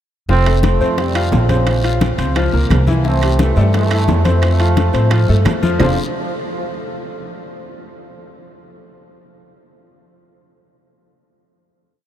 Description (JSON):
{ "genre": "latin, salsa", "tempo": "174 BPM", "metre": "4/4", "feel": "straight", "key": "F major", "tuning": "A4 = 439 Hz", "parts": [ { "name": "mellow trombone section", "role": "melody", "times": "0.3-6.0 s", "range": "C3 to C4", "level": "-22 LUFS", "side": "right 2 dB", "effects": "diffuse ambient delay" }, { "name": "bright concert grand piano", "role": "accompaniment", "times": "0.3-6.0 s", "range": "E3 to F5", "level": "-21 LUFS", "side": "left 3 dB", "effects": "none" }, { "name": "upright bass", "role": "bass", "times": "0.3-6.0 s", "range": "F1 to A2", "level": "-15 LUFS", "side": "equal", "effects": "none" }, { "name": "bongos", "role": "percussion", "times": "0.3-5.9 s", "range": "none", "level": "-27 LUFS", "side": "left 7 dB", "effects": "none" }, { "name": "congas", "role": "percussion", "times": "0.3-5.9 s", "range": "none", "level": "-23 LUFS", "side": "left 1 dB", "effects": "none" }, { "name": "guiro", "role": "percussion", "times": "0.3-5.9 s", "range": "none", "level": "-35 LUFS", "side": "left 4 dB", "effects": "none" }, { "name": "claves", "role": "percussion", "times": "0.5-5.9 s", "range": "none", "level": "-35 LUFS", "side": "right 7 dB", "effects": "none" }, { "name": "timbales", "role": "percussion", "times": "0.5-5.9 s", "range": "none", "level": "-27 LUFS", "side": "right 6 dB", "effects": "none" } ], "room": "moderate huge ambient reverb, RT60 6.7 s", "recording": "dreamy mix soaked in reverb", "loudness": "-13 LUFS", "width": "side -11 dB against mid", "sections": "0.3-5.8 A section; 5.8-7.2 final chord", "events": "none", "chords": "0.3 Fadd9; 1.7 Bbmadd9; 3.0 C6; 4.4 F; 5.8 F6", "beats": "| 0.29 0.63 0.98 1.32 | 1.67 2.01 2.35 2.70 | 3.04 3.39 3.73 4.08 | 4.42 4.77 5.11 5.46 | 5.80" }